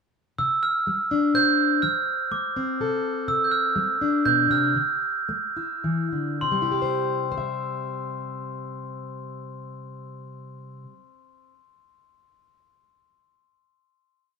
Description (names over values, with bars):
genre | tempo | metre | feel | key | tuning
indie folk with a building arrangement | 99-125 BPM | 3/4 | straight | C major | A4 = 440 Hz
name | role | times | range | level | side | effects
glockenspiel with soft plastic mallets | melody | 0.4-10.8 s | C6 to G6 | -24 LUFS | right 3 dB | none
fingerpicked plugged-in steel-string acoustic guitar | accompaniment | 0.4-11.6 s | B2 to E5 | -27 LUFS | left 3 dB | none
room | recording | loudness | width
wet studio reverb, RT60 0.5 s | band playing live in one room | -22 LUFS | side -5 dB against mid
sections
0.4-6.4 verse; 6.4-10.0 final chord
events
slowing down 3.3-6.4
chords
0.4 Csus2; 1.8 F; 3.3 Csus2; 4.8 Dmadd9; 6.4 C